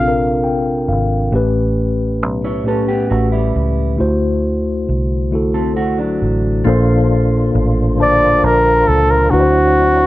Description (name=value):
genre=slow six-eight R&B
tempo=45 BPM (dotted quarters)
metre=6/8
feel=straight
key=unclear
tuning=A4 = 440 Hz
part: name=warm flugelhorn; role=melody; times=0.0-0.9, 8.0-10.1 s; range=F#4 to F5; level=-13 LUFS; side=equal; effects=none
part: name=mellow tine electric piano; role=accompaniment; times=0.0-10.1 s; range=A2 to A5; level=-16 LUFS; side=left 1 dB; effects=slow stereo tremolo
part: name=vintage muted fingered electric bass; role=bass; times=0.0-10.1 s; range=Ab1 to D2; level=-18 LUFS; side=right 1 dB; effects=none
part: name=mellow electric guitar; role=second line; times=2.4-6.6 s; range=F#3 to C#5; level=-22 LUFS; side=right 4 dB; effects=spring reverb
part: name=percussive tonewheel organ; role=sustained chords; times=6.6-10.1 s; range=F3 to F4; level=-22 LUFS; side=right 1 dB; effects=overdrive, chorus vibrato, slow rotary speaker
room=light reverb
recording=none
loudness=-13 LUFS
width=side -16 dB against mid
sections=0.0-6.7 A section; 6.7-10.1 B section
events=tine electric piano fill 0.0-1.3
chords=0.0 C7sus4; 1.3 A9; 4.0 D7; 6.7 Bbmaj7; 9.3 D9